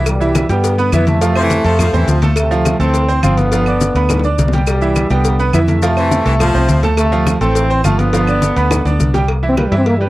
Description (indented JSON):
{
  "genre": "latin, salsa",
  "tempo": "208 BPM",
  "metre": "4/4",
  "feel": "straight",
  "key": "C major",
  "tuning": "A4 = 441 Hz",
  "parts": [
    { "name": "clear saxophone section", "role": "second line", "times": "0.0-2.3, 6.0-6.9 s", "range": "E3 to F3", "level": "-20 LUFS", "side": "left 2 dB", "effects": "none" },
    { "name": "bright grand piano", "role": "accompaniment", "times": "0.0-10.1 s", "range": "E3 to D6", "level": "-18 LUFS", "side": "right 3 dB", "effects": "none" },
    { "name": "vintage muted fingered electric bass", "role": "bass", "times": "0.0-10.1 s", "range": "G1 to G2", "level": "-16 LUFS", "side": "equal", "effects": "none" },
    { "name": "bright trombone section", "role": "melody", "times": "0.1-9.2 s", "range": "B2 to C4", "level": "-18 LUFS", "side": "equal", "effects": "tape echo" },
    { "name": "claves", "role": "percussion", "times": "0.1-9.7 s", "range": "none", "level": "-30 LUFS", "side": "right 5 dB", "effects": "none" },
    { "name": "congas", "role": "percussion", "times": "0.1-10.1 s", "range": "none", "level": "-20 LUFS", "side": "left 2 dB", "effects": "none" },
    { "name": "cowbell and bongos", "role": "percussion", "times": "0.1-10.0 s", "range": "none", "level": "-24 LUFS", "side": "left 4 dB", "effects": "none" },
    { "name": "maracas", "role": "percussion", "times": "0.1-9.3 s", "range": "none", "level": "-30 LUFS", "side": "left 11 dB", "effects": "none" },
    { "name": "dark trombone", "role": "melody", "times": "9.5-10.1 s", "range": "G3 to C4", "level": "-15 LUFS", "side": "equal", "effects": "none" }
  ],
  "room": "light reverb",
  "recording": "dry, close 1970s-style studio recording",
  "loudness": "-11 LUFS",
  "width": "side -17 dB against mid",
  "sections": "0.1-9.3 A section",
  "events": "drum fill 4.1-4.7, 8.7-9.3",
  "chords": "0.1 Cmaj7; 1.2 Fmaj7; 2.4 Dm7; 3.5 G7; 4.7 Cmaj7; 5.8 Fmaj7; 7.0 Dm7; 8.1 G7; 9.3 Cmaj7"
}